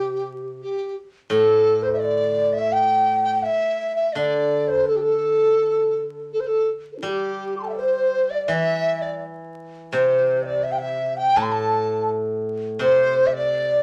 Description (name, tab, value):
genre	chinese traditional, Chinese chamber ensemble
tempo	84 BPM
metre	4/4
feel	rubato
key	G zhi mode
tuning	A4 = 437 Hz
part	xiao	melody	0.0-13.8 s	G4 to A5	-26 LUFS	equal	none
part	mellow large dizi	second line	0.0-13.8 s	D4 to D6	-24 LUFS	equal	none
part	steel-string zither	accompaniment	0.0-13.8 s	A2 to G3	-29 LUFS	equal	none
room	moderate studio ambience, RT60 0.5 s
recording	vinyl crackle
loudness	-21 LUFS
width	mono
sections	0.0-13.8 A section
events	none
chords	none